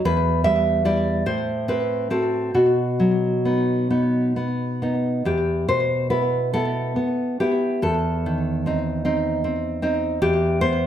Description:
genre	romantic piece for solo classical guitar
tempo	43-51 BPM (dotted quarters)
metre	6/8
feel	rubato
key	E minor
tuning	A4 = 441 Hz
part	nylon-string guitar	solo	0.1-10.9 s	E2 to E5	-19 LUFS	equal	slapback echo
room	wet recital hall reverb, RT60 1.4 s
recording	none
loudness	-19 LUFS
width	side -10 dB against mid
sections	0.0-10.9 A section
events	none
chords	0.0 Em; 1.3 F#dim/A; 2.5 B; 5.3 E5; 7.8 Adim; 10.2 E5

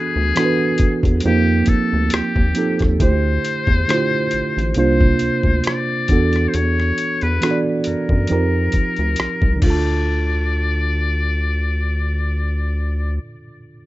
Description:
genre	R&B, neo-soul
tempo	68 BPM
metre	4/4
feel	swing 54% on 16ths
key	unclear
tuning	A4 = 440 Hz
part	trumpet with metal mute	melody	0.0-13.2 s	G4 to D5	-23 LUFS	left 4 dB	plate reverb
part	tine electric piano	accompaniment	0.0-13.9 s	C3 to A5	-20 LUFS	right 3 dB	none
part	rubbery square bass	bass	0.2-13.2 s	A1 to F#2	-19 LUFS	equal	none
part	boom bap sampler-style drum kit	drums	0.4-9.8 s	crash cymbal, hi-hat, kick drum, rim click	-19 LUFS	equal	none
room	moderate small room reverb, RT60 0.5 s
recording	rough home demo mix, nothing above 7.7 kHz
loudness	-16 LUFS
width	side -17 dB against mid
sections	0.0-10.1 A section; 10.1-13.6 B section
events	none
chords	0.0 E9sus4; 1.2 F9sus4; 3.0 D9sus4; 4.8 C9sus4; 6.1 E9sus4; 8.3 F9sus4; 9.6 Dm

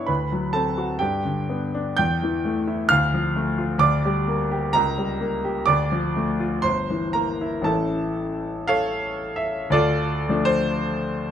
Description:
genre	classical, romantic character piece for solo piano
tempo	54-67 BPM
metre	2/4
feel	rubato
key	D minor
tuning	A4 = 440 Hz
part	clear grand piano	solo	0.0-11.3 s	G1 to G6	-20 LUFS	equal	none
room	moderate recital hall reverb, RT60 1.6 s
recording	close, detailed microphones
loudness	-20 LUFS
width	side -9 dB against mid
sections	0.0-9.7 A section; 9.7-11.3 B section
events	none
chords	0.1 D7; 1.0 G; 2.0 A5/E; 2.9 Dm; 3.8 Gm/D; 4.7 Gdim/Db; 5.7 Dm; 6.7 Edim/G; 7.7 A; 9.7 Dm

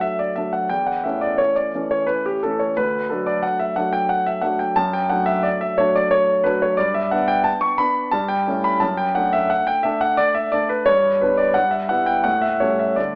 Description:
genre	classical-period piano sonatina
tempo	88 BPM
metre	3/4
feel	rubato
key	D major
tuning	A4 = 441 Hz
part	warm concert grand piano	solo	0.0-13.2 s	D2 to C#6	-20 LUFS	equal	none
room	moderate scoring stage reverb, RT60 1.4 s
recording	recorded in a church or concert hall, AM radio sound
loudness	-20 LUFS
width	mono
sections	0.0-13.2 A section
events	none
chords	0.0 D; 0.7 A/E; 2.8 D; 4.8 D/F#; 6.8 G; 8.1 A7/G; 8.8 D/F#; 10.9 G; 11.6 Em/G; 12.3 A7

